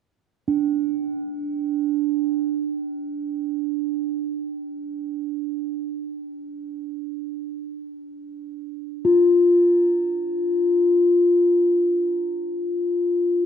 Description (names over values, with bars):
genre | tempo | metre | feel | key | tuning
world meditative, free-time meditation music | free time | none | none | unclear | A4 = 439 Hz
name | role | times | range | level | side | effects
bronze singing bowl | solo | 0.5-13.5 s | D4 to F4 | -20 LUFS | equal | none
room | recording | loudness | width
moderate cathedral reverb, RT60 4.7 s | dark, warm production | -20 LUFS | side -7 dB against mid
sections
0.3-13.5 A section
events
none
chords
none